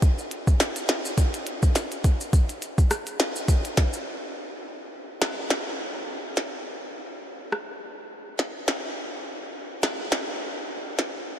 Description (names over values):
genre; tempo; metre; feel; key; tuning
dancehall; 104 BPM; 4/4; swing 56% on 16ths; none; none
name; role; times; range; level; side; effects
glitchy drum kit; drums; 0.0-11.1 s; hi-hat, kick drum, rim click, snare drum; -24 LUFS; equal; overdrive
maracas; percussion; 0.0-4.1 s; none; -38 LUFS; equal; none
room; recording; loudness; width
moderate huge ambient reverb, RT60 8.4 s; dreamy mix soaked in reverb, lossy compression artefacts; -24 LUFS; side -10 dB against mid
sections
0.0-4.6 A section; 4.6-11.4 B section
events
break 4.1-4.6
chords
none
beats
| 0.02 0.60 1.18 1.75 | 2.33 2.91 3.48 4.06 | 4.64 5.22 5.79 6.37 | 6.95 7.52 8.10 8.68 | 9.25 9.83 10.41 10.98